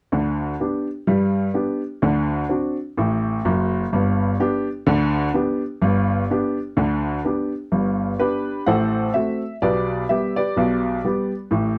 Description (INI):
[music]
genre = jazz, stride piano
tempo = 126 BPM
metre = 4/4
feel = swing 59% on 8ths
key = G major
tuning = A4 = 440 Hz
[part]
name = clear upright piano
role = solo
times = 0.1-11.8 s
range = F#1 to F#5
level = -22 LUFS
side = equal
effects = none
[sound]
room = light reverb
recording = close, detailed microphones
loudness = -22 LUFS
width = mono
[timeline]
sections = 0.1-7.7 A section; 7.7-11.8 B section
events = none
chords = 0.1 G/D; 2.0 D7; 3.9 G; 8.7 F#dim/A; 9.6 G/B